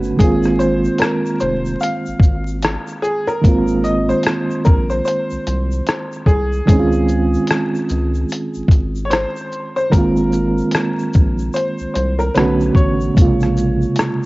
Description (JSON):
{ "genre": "lo-fi hip hop", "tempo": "74 BPM", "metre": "4/4", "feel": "swing 62% on 16ths", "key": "Ab major", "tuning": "A4 = 440 Hz", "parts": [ { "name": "bright upright piano", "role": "melody", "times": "0.0-14.3 s", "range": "Ab4 to F5", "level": "-23 LUFS", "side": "left 1 dB", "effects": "low-pass filter, cassette tape" }, { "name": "reed electric piano", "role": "accompaniment", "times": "0.0-14.3 s", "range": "C3 to F#4", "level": "-18 LUFS", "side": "right 2 dB", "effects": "fast tremolo, low-pass filter, cassette tape" }, { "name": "round analog bass", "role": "bass", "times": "0.0-13.9 s", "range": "F1 to Db2", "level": "-21 LUFS", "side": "equal", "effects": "transformer saturation" }, { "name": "egg shaker", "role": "percussion", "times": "0.0-14.3 s", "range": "none", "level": "-45 LUFS", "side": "left 8 dB", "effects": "none" }, { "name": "lo-fi sampler-style drum kit", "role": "drums", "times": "0.2-14.2 s", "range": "hi-hat, kick drum, rim click, shaker", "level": "-15 LUFS", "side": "equal", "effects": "cassette tape" } ], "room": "light reverb, digital ambience", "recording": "home recording on cassette, vinyl crackle, nothing above 7.6 kHz", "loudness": "-14 LUFS", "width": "side -20 dB against mid", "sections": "0.0-3.4 A section; 3.4-14.3 B section", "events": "none", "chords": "0.2 Ab6; 3.4 Ab69; 6.7 Dbmaj7; 9.9 Ab69; 12.4 Bm7; 13.2 Bbm7" }